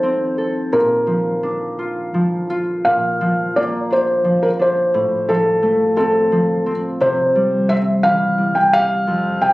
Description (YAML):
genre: children's music, lullaby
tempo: 58 BPM (dotted quarters)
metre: 6/8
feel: rubato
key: Bb major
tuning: A4 = 441 Hz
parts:
  - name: felt-muted upright piano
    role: melody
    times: 0.0-9.5 s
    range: A4 to G5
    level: -16 LUFS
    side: equal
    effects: none
  - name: concert harp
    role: accompaniment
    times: 0.0-9.5 s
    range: F2 to A4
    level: -20 LUFS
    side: equal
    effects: none
room: light reverb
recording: recorded on a phone in the room, club reverb, compression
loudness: -15 LUFS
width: side -19 dB against mid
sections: 0.0-2.9 A section; 2.9-9.5 A section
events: none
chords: 0.0 F7; 0.7 Bb; 4.9 F/A; 7.0 C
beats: | 0.72 1.79 | 2.86 3.91 | 4.94 5.96 | 7.00 8.04 | 9.07